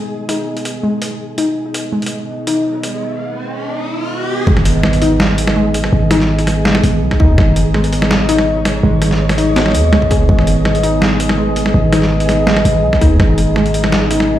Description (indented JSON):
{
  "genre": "half-time drum and bass",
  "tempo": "165 BPM",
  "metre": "4/4",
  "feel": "half-time",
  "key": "G# minor",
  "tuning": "A4 = 444 Hz",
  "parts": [
    { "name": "deep dark ambient pad", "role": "sustained chords", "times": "0.0-14.4 s", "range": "B3 to D#5", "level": "-19 LUFS", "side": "equal", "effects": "chorus, built-in reverb, sidechain pumping" },
    { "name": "flickering grainy texture", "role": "texture", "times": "0.0-14.4 s", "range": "G#3 to C#5", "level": "-27 LUFS", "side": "equal", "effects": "built-in reverb" },
    { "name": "warbly dusty pluck", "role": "arpeggios", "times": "0.3-14.3 s", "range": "G#3 to G#4", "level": "-19 LUFS", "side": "left 1 dB", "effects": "chorus, ping-pong delay" },
    { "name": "boom bap sampler-style drum kit", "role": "drums", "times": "0.3-14.3 s", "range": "hi-hat, snare drum", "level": "-17 LUFS", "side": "right 1 dB", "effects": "studio ambience" },
    { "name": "riser and impact", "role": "sound effects", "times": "2.5-5.9 s", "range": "none", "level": "-23 LUFS", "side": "equal", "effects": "none" },
    { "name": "growling 808-style bass", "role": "bass", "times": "4.5-14.4 s", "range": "G#1 to D#2", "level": "-15 LUFS", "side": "equal", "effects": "none" },
    { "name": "electronic kick drum", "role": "drums", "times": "4.5, 7.1-7.5, 10.0-10.4, 12.9-13.3 s", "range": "none", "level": "-14 LUFS", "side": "equal", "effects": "studio ambience" }
  ],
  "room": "light reverb",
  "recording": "played on a big sound system in a bare room, large studio reverb",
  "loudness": "-12 LUFS",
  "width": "side -12 dB against mid",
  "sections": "0.0-4.5 A section; 4.5-14.4 B section",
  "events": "riser 2.5-4.5; drop 4.5-14.4; impact 4.5-5.9",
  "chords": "0.0 G#m"
}